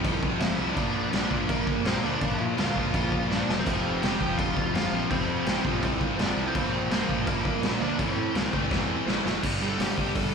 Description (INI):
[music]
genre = punk rock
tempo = 166 BPM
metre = 4/4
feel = straight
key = unclear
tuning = A4 = 439 Hz
[part]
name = cranked stack guitar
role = riff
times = 0.0-10.3 s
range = F2 to Bb3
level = -32 LUFS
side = left 14 dB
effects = overdrive
[part]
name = cranked stack guitar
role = riff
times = 0.0-10.3 s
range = F2 to Bb3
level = -32 LUFS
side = right 12 dB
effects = overdrive, slapback echo
[part]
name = thick fuzz guitar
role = riff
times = 0.0-10.3 s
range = F2 to Bb3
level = -32 LUFS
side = equal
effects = distortion, slapback echo
[part]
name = fuzz picked electric bass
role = bass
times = 0.0-10.3 s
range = D1 to Bb2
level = -34 LUFS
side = equal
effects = overdrive
[part]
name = raw garage drum kit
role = drums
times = 0.0-10.2 s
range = crash cymbal, hi-hat, kick drum, snare drum, splash cymbal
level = -28 LUFS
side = equal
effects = none
[part]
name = bluesy overdriven lead guitar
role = melody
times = 0.4-10.3 s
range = Bb3 to G5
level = -33 LUFS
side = equal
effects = distortion, slapback echo
[sound]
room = little or no reverb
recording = live gig heard through the venue's PA, club reverb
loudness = -24 LUFS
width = side -6 dB against mid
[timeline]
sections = 0.0-9.4 A section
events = drum fill 3.3-3.7, 8.7-9.4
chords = 0.0 F5; 0.8 Bb; 3.7 F5; 6.6 Bb; 8.0 Am; 9.4 G5